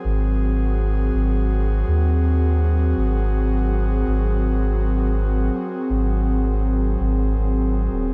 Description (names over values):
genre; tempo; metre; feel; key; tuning
ambient dub; 82 BPM; 4/4; straight; Ab mixolydian; A4 = 440 Hz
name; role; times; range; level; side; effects
airy breathy pad; sustained chords; 0.0-8.1 s; Gb3 to Bb4; -26 LUFS; equal; chorus
soft dub sub bass; bass; 0.0-8.1 s; Eb1 to Eb2; -22 LUFS; equal; tube saturation
room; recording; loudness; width
little or no reverb; none; -21 LUFS; mono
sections
0.0-8.1 A section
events
none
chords
0.0 Ab9